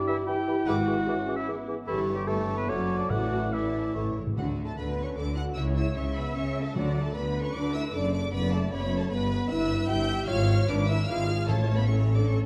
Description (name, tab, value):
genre	quick classical-period movement for symphony orchestra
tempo	151 BPM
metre	3/4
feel	rubato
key	D major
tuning	A4 = 435 Hz
part	warm oboe	second line	0.0-4.2 s	E4 to G5	-36 LUFS	equal	none
part	rich studio viola section	accompaniment	0.0-12.5 s	E3 to E5	-38 LUFS	equal	none
part	dark French horn section	sustained chords	0.0-12.5 s	F#3 to G4	-34 LUFS	equal	none
part	dark clarinet	second line	0.1-4.2 s	G4 to A4	-40 LUFS	equal	none
part	mellow silver concert flute	second line	0.1-4.2 s	B5 to D6	-42 LUFS	equal	none
part	mellow bassoon	accompaniment	0.1-4.2 s	E3 to F#3	-40 LUFS	equal	none
part	rich studio violin section	melody	0.7-12.4 s	F#5 to G6	-42 LUFS	equal	none
part	clear studio violin section	second line	0.7-12.4 s	E4 to G5	-42 LUFS	equal	none
part	rich studio cello section	bass	0.7-12.5 s	F#2 to D3	-34 LUFS	equal	none
part	rich studio double bass section	bass	0.7-12.5 s	F#1 to D2	-33 LUFS	equal	none
part	timpani	percussion	3.1-7.3, 11.5-11.9 s	A2 to D3	-36 LUFS	equal	none
room	wet scoring stage reverb, RT60 1.7 s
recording	dark, warm production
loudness	-28 LUFS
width	mono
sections	0.0-4.4 A section; 4.4-12.5 B section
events	timpani fill 4.0-4.4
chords	0.0 Em; 0.7 E7/G#; 1.9 A7/G; 2.7 D/F#; 3.1 Asus4; 4.0 A; 4.4 D5; 5.6 C#m7; 6.8 Dmaj13; 7.9 D/F#; 9.1 Em/G; 10.3 E13b9/G#; 11.5 A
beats	0.27 | 0.67 1.07 1.47 | 1.87 2.27 2.68 | 3.10 3.53 3.95 | 4.37 4.77 5.17 | 5.57 5.97 6.37 | 6.76 7.16 7.55 | 7.95 8.34 8.73 | 9.12 9.50 9.89 | 10.29 10.69 11.08 | 11.49 11.89 12.30